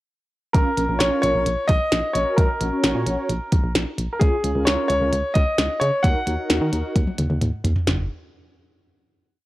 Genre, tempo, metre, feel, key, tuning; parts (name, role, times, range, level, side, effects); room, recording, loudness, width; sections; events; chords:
synth-pop; 131 BPM; 4/4; straight; A4 = 440 Hz
clear concert grand piano; melody; 0.5-7.4 s; G#4 to F#5; -23 LUFS; equal; analog delay
mellow synth brass; accompaniment; 0.5-7.0 s; C#4 to C#5; -26 LUFS; right 1 dB; chorus
solid FM bass; bass; 0.5-8.1 s; F#1 to D#3; -25 LUFS; equal
minimal click drum kit; drums; 0.5-8.0 s; hi-hat, kick drum, snare drum, toms; -21 LUFS; equal
little or no reverb; dry, gritty hardware recording, cassette tape; -18 LUFS; side -17 dB against mid
0.5-7.9 verse; 7.9-9.5 final note
drum fill 7.0-7.9
0.5 A#m; 2.1 F#/A#; 4.2 C#; 6.0 D#m; 7.9 N.C.